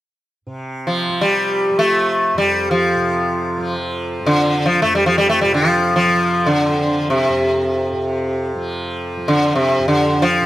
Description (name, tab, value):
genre	indian classical, Hindustani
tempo	free time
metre	none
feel	none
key	F raga bhupali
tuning	A4 = 440 Hz
part	tanpura	drone	0.5-10.5 s	F2 to F3	-24 LUFS	right 1 dB	none
part	sitar	melody	0.9-10.5 s	C3 to A3	-15 LUFS	equal	none
room	light reverb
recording	close, detailed microphones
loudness	-15 LUFS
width	side -14 dB against mid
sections	0.5-10.5 A section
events	none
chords	none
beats	free time